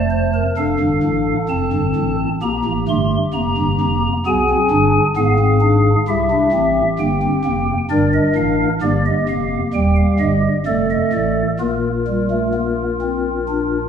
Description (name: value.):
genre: classical, baroque-style 4-part fugue for pipe organ.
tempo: 65 BPM.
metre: 4/4.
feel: straight.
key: Bb major.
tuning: A4 = 444 Hz.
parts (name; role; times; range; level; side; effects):
pipe organ, stopped flute; solo; 0.0-13.9 s; Eb1 to C6; -15 LUFS; equal; none.
room: wet stone room reverb, RT60 1.3 s.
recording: heard from further back in the room.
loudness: -15 LUFS.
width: side -8 dB against mid.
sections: 0.6-13.9 A section.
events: none.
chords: 0.0 F; 0.6 Dm/F; 2.4 Gm; 4.3 Bdim7; 6.1 C; 7.9 Gm; 9.7 Eb; 10.7 F7; 11.6 Bb.